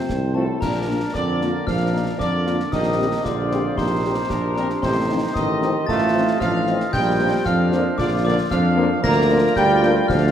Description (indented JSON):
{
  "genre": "military-style march for wind band",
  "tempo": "114 BPM",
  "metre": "2/4",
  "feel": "straight",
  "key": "Bb major",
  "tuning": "A4 = 441 Hz",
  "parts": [
    { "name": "dark trumpet section", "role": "melody", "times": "0.0-10.3 s", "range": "A4 to Bb5", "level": "-26 LUFS", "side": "equal", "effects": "none" },
    { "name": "mellow woodwind section", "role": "second line", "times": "0.0-10.3 s", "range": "F4 to Eb5", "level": "-32 LUFS", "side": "left 2 dB", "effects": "none" },
    { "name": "warm euphonium", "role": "second line", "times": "0.0-10.3 s", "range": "A2 to Bb3", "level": "-24 LUFS", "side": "right 2 dB", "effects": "none" },
    { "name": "mellow tuba", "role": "bass", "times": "0.1-10.3 s", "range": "A1 to F2", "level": "-22 LUFS", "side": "right 1 dB", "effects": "none" },
    { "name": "concert snare drum, concert bass drum and clash cymbals", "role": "drums", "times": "0.1-10.3 s", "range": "none", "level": "-30 LUFS", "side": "left 1 dB", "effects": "none" },
    { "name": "glockenspiel with soft plastic mallets", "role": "second line", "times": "0.3-10.3 s", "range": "A5 to Bb6", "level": "-28 LUFS", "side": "left 4 dB", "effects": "none" },
    { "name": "mellow French horn section", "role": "accompaniment", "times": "0.3-9.9 s", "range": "F3 to G4", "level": "-28 LUFS", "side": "left 4 dB", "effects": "none" },
    { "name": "bright trombone section", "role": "sustained chords", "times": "0.3-10.3 s", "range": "A3 to F4", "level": "-28 LUFS", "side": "right 1 dB", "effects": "none" }
  ],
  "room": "wet scoring stage reverb, RT60 1.6 s",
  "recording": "none",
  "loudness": "-17 LUFS",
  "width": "side -9 dB against mid",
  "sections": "0.6-10.3 A section",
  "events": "none",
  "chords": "0.0 F; 0.6 Bb; 2.7 Cm7/Bb; 4.8 F7/A; 6.9 Bb; 9.0 Bb/D"
}